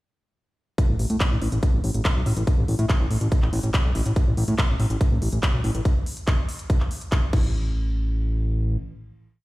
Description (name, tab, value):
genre	psychedelic trance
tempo	142 BPM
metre	4/4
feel	straight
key	unclear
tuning	A4 = 440 Hz
part	electronic kick drum	drums	0.8-7.4 s	none	-20 LUFS	equal	none
part	techno drum kit	drums	0.8-7.4 s	crash cymbal, handclaps, hi-hat	-31 LUFS	equal	none
part	fat analog bass	bass	0.9-8.8 s	A1 to A2	-22 LUFS	equal	none
room	little or no reverb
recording	played on a big sound system in a bare room, stone room reverb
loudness	-20 LUFS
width	side -19 dB against mid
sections	0.8-7.5 groove; 7.5-9.4 final hit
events	none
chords	none